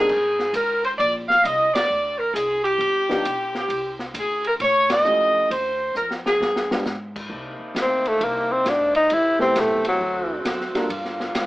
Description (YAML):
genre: jazz, big band swing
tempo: 133 BPM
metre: 4/4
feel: swing 66% on 8ths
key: C minor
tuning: A4 = 440 Hz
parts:
  - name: clear saxophone section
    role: melody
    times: 0.0-6.8 s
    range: G4 to F5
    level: -19 LUFS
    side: equal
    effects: none
  - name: warm baby grand piano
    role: accompaniment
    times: 0.0-0.1, 3.1-10.9 s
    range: F3 to Bb4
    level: -26 LUFS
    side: equal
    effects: none
  - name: upright bass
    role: bass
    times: 0.0-11.5 s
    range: G1 to A2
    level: -38 LUFS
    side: equal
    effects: none
  - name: open jazz drum kit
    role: drums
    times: 0.1-11.5 s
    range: crash cymbal, hi-hat, kick drum, ride cymbal, snare drum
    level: -30 LUFS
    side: equal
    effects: none
  - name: mellow saxophone section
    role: sustained chords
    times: 7.3-11.5 s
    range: C3 to G4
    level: -30 LUFS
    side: equal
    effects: none
  - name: breathy tenor saxophone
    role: melody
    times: 7.8-10.4 s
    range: F#3 to E4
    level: -19 LUFS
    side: equal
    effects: none
room: moderate club reverb, RT60 0.5 s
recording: AM radio sound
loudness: -19 LUFS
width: side -18 dB against mid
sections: 0.0-7.3 A section; 7.3-11.5 B section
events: band accent 1.7, 4.8; drum fill 6.0-6.9; tenor saxophone solo 7.3-11.5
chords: 0.1 Abadd9; 1.9 Bb9 (rootless); 2.8 G7b13; 3.7 Csus2; 4.6 A7b13; 5.5 Dm7; 6.4 G7b9; 7.3 Cm9; 9.1 Am9; 10.0 D7; 10.9 Gm7